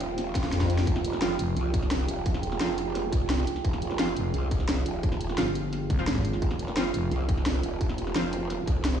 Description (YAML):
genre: dark technical drum and bass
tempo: 173 BPM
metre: 4/4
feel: straight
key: F minor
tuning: A4 = 439 Hz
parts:
  - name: deep dark ambient pad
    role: sustained chords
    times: 0.0-9.0 s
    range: F4 to C5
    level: -33 LUFS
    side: right 6 dB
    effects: chorus, built-in reverb, sidechain pumping
  - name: growl bass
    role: bass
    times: 0.0-9.0 s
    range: Eb1 to F2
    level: -30 LUFS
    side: equal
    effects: chorus, tube saturation
  - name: drum and bass drum kit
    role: drums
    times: 0.0-9.0 s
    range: hi-hat, snare drum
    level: -32 LUFS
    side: equal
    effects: studio reverb
  - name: warbly tape-like pad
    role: texture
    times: 0.0-9.0 s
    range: G5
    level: -42 LUFS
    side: right 5 dB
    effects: chorus, built-in reverb, sidechain pumping
  - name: swell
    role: sound effects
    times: 0.3-0.9 s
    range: none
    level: -41 LUFS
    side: equal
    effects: none
  - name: electronic kick drum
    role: drums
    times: 0.4-8.7 s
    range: none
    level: -29 LUFS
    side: equal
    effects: distortion, studio reverb
  - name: orchestra-hit-like synth stab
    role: stabs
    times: 1.2-8.2 s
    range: F3 to F4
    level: -35 LUFS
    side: equal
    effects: built-in reverb, dub echo
  - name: growling FM bass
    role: bass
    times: 1.4-1.6, 4.2-7.1 s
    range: F1 to C2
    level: -28 LUFS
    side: left 1 dB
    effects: none
room: digital ambience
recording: played on a big sound system in a bare room, large studio reverb, small room reverb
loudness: -25 LUFS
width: side -9 dB against mid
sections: 0.0-9.0 A section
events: swell 0.3-0.9; drum fill 0.4-0.9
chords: 0.0 Fmadd9